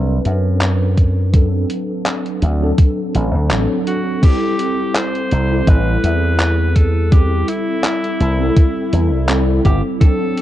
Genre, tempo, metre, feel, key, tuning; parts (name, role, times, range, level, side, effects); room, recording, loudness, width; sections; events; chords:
vaporwave; 83 BPM; 4/4; swing 55% on 16ths; C lydian; A4 = 441 Hz
mellow tine electric piano; accompaniment; 0.0-10.4 s; F#3 to B4; -20 LUFS; equal; medium stereo tremolo, ensemble chorus, analog delay
slap bass with an envelope filter; bass; 0.0-9.8 s; G1 to F#2; -16 LUFS; equal
detuned 8-bit digital drum machine; drums; 0.3-10.4 s; crash cymbal, handclaps, hi-hat; -23 LUFS; equal; vintage 12-bit sampler grit
electronic kick drum; drums; 1.0-10.2 s; -11 LUFS; equal; vintage 12-bit sampler grit
bright alto saxophone; melody; 3.9-10.4 s; E4 to C5; -22 LUFS; left 1 dB; vintage 12-bit sampler grit, tape echo
digital ambience; dark, warm production, cassette tape; -13 LUFS; side -13 dB against mid
0.0-4.2 A section; 4.2-10.4 B section
break 3.5-4.2
0.0 D7; 4.2 C6